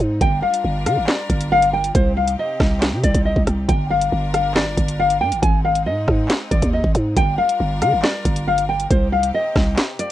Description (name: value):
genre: hip hop, drill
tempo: 138 BPM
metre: 4/4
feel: half-time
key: G phrygian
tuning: A4 = 445 Hz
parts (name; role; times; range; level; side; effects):
- bright symphonic string section; sustained chords; 0.0-10.1 s; C3 to Bb4; -32 LUFS; equal; none
- growling 808-style bass; bass; 0.0-9.8 s; G1 to D3; -20 LUFS; right 1 dB; none
- nylon-string guitar; melody; 0.2-10.1 s; C5 to Ab5; -20 LUFS; left 2 dB; low-pass filter
- drill drum kit; drums; 0.2-10.1 s; handclaps, hi-hat, kick drum, rim click, snare drum; -20 LUFS; equal; vintage 12-bit sampler grit
room: little or no reverb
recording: rough home demo mix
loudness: -16 LUFS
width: side -13 dB against mid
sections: 0.0-10.1 A section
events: break 9.8-10.1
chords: 0.2 Gm7; 1.9 Cm; 3.7 Gm7; 5.4 Ab; 7.2 Gm7; 8.9 Cm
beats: | 0.21 0.64 1.08 1.51 | 1.95 2.38 2.82 3.25 | 3.69 4.12 4.56 4.99 | 5.43 5.86 6.30 6.73 | 7.17 7.60 8.04 8.47 | 8.90 9.34 9.78